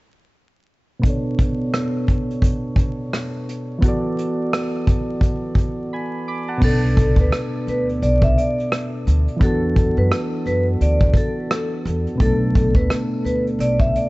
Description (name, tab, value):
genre	lo-fi hip hop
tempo	86 BPM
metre	4/4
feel	swing 59% on 16ths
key	B minor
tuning	A4 = 443 Hz
part	soft electric-piano-like synth keys	accompaniment	1.0-14.1 s	B2 to D6	-23 LUFS	equal	chorus, cassette tape, low-pass filter
part	vintage brush drum kit	drums	1.0-14.1 s	crash cymbal, hi-hat, kick drum, rim click	-19 LUFS	equal	vintage 12-bit sampler grit
part	vibraphone with medium mallets	melody	6.6-14.1 s	A4 to E5	-23 LUFS	equal	low-pass filter, tape echo
part	upright bass	bass	6.6-13.9 s	B1 to F#2	-20 LUFS	equal	none
room	studio reverb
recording	vinyl crackle, nothing above 7.9 kHz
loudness	-17 LUFS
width	side -21 dB against mid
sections	1.0-6.6 A section; 6.6-14.1 B section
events	filter sweep on synth keys 1.0-6.6; break 5.9-6.6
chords	1.0 Bm7; 3.8 E9sus4; 6.6 Bm7; 9.4 E9sus4; 12.2 Bm7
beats	| 1.04 1.73 2.43 3.13 | 3.83 4.52 5.22 5.92 | 6.62 7.32 8.01 8.71 | 9.41 10.11 10.80 11.50 | 12.20 12.90 13.59